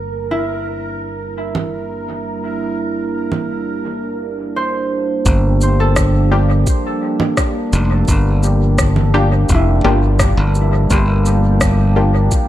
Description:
ambient dub; 85 BPM; 4/4; straight; G dorian; A4 = 440 Hz
warm analog pad; sustained chords; 0.0-12.5 s; F3 to E4; -21 LUFS; right 1 dB; chorus
modern bright fingered electric bass; bass; 0.0-12.3 s; F1 to G1; -15 LUFS; equal
bubbling stepped-filter texture; texture; 0.0-12.5 s; G4 to Bb4; -28 LUFS; right 2 dB; chorus, built-in reverb
concert harp; arpeggios; 0.3-12.2 s; E4 to C5; -24 LUFS; right 1 dB; dub echo
electronic congas, shaker and rim click; drums; 1.6-12.5 s; -22 LUFS; right 1 dB; studio ambience, dub echo
electronic kick drum; drums; 5.3-12.5 s; -18 LUFS; equal; studio ambience
filtered dub chord stab; stabs; 6.3-12.1 s; Bb3 to G4; -22 LUFS; left 2 dB; chorus, dub echo
light reverb; -13 LUFS; side -13 dB against mid
0.0-5.3 A section; 5.3-12.5 B section
filter sweep on analog synth pad 0.0-5.3
0.0 Gm7
0.32 1.02 1.73 | 2.43 3.14 3.85 4.55 | 5.26 5.96 6.67 7.38 | 8.08 8.79 9.49 10.20 | 10.90 11.61 12.32

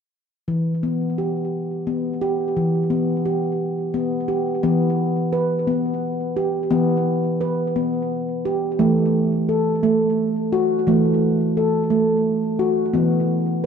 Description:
world meditative; 58 BPM (dotted quarters); 6/8; straight; E minor; A4 = 441 Hz
handpan; arpeggios; 0.5-13.7 s; E3 to B4; -18 LUFS; equal; ping-pong delay
wet echo chamber reverb, RT60 2.3 s; dark, warm production; -18 LUFS; side -7 dB against mid
0.5-4.6 A section; 4.6-13.7 B section
0.5 Em; 8.8 A5/E; 12.9 E5
| 0.48 1.52 | 2.56 3.60 | 4.64 5.68 | 6.72 7.76 | 8.80 9.84 | 10.87 11.91 | 12.95

